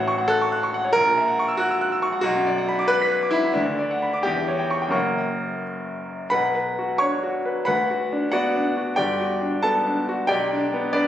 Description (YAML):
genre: classical, virtuoso piano study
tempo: 91 BPM (dotted quarters)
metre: 6/8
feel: rubato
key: B minor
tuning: A4 = 440 Hz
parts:
  - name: clear concert grand piano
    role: solo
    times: 0.0-11.1 s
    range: F#1 to B6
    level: -20 LUFS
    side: equal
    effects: none
room: moderate scoring stage reverb, RT60 1.6 s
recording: recorded on a phone in the room, studio reverb, compression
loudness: -20 LUFS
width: side -11 dB against mid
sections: 0.0-6.3 A section; 6.3-11.1 B section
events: none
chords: 0.0 F#m/A; 0.9 F#7/A#; 2.2 Bm; 3.6 Bm/D; 4.3 C#dim/E; 4.9 F#; 6.3 Bm; 7.7 Bm/D; 9.0 Gmaj7; 10.3 G/B